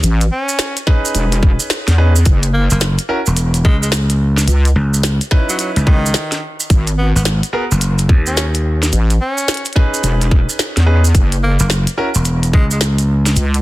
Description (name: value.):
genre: glitch hop.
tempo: 108 BPM.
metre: 4/4.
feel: swing 64% on 16ths.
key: unclear.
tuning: A4 = 440 Hz.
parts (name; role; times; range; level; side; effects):
gritty slap bass; bass; 0.0-13.4 s; E1 to D#2; -14 LUFS; equal; overdrive.
wobble bass; bass; 0.0-13.6 s; E1 to E2; -12 LUFS; equal; chorus, overdrive.
glitchy drum kit; drums; 0.0-13.6 s; hi-hat, snare drum; -19 LUFS; equal; small room ambience, soft clipping on snare.
maracas; percussion; 0.0-13.6 s; none; -23 LUFS; right 4 dB; none.
clear tenor saxophone; melody; 0.3-12.8 s; D#3 to C#4; -24 LUFS; equal; dub echo.
clear concert grand piano; stabs; 0.9-12.1 s; B3 to B4; -22 LUFS; right 1 dB; sidechain pumping, dub echo.
electronic kick drum; drums; 0.9-12.7 s; none; -11 LUFS; equal; small room ambience.
room: digital ambience.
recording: dense, heavily limited modern master.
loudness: -12 LUFS.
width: side -17 dB against mid.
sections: 0.0-13.6 A section.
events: none.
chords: 0.0 Amaj9#11 (rootless); 2.3 F#7(no3); 4.5 C#m9; 6.7 G#7(no3); 8.9 Amaj9#11 (rootless); 11.1 F#7(no3).